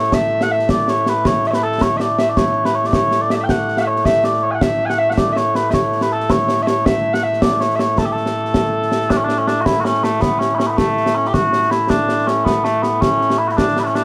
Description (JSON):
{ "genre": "scottish traditional, Scottish pipe music", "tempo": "107 BPM (dotted quarters)", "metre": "6/8", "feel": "straight", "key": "A major", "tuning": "A4 = 440 Hz", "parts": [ { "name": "mellow small bagpipes", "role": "melody", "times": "0.0-14.0 s", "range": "A2 to G#5", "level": "-18 LUFS", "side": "equal", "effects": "none" }, { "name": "concert snare drum and concert bass drum", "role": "drums", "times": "0.0-14.0 s", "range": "none", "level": "-22 LUFS", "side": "equal", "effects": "none" } ], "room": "light reverb", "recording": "none", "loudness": "-17 LUFS", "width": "mono", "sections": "0.1-9.1 A section; 9.1-14.0 B section", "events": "none", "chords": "none", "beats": "| 0.13 0.69 | 1.25 1.81 | 2.37 2.93 | 3.50 4.06 | 4.62 5.18 | 5.74 6.30 | 6.86 7.42 | 7.98 8.54 | 9.10 9.66 | 10.22 10.79 | 11.35 11.91 | 12.47 13.03 | 13.59" }